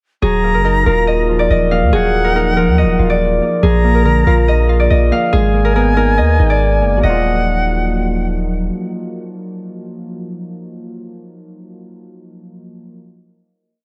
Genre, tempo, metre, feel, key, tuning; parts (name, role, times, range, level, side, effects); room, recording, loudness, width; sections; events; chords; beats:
hip hop; 141 BPM; 4/4; half-time; Eb harmonic minor; A4 = 440 Hz
Celtic harp; melody; 0.2-8.8 s; Ab4 to F5; -19 LUFS; equal; digital delay
reedy silver concert flute; second line; 0.2-8.3 s; Gb5 to Bb5; -23 LUFS; equal; digital delay
glassy digital keys; accompaniment; 0.2-13.0 s; D3 to F4; -22 LUFS; equal; chorus
long sustained 808-style bass; bass; 0.2-8.7 s; Eb1 to Eb2; -18 LUFS; equal
small room ambience; -14 LUFS; mono
0.2-7.0 hook; 7.0-10.4 final chord
0.2 Ebmadd9; 3.6 Bb; 5.3 Abmadd9; 7.0 Ebmadd9
| 0.22 0.65 1.07 1.50 | 1.93 2.35 2.78 3.20 | 3.63 4.05 4.48 4.91 | 5.33 5.76 6.18 6.61 | 7.03 7.46 7.88 8.31 | 8.73 9.16 9.59 10.01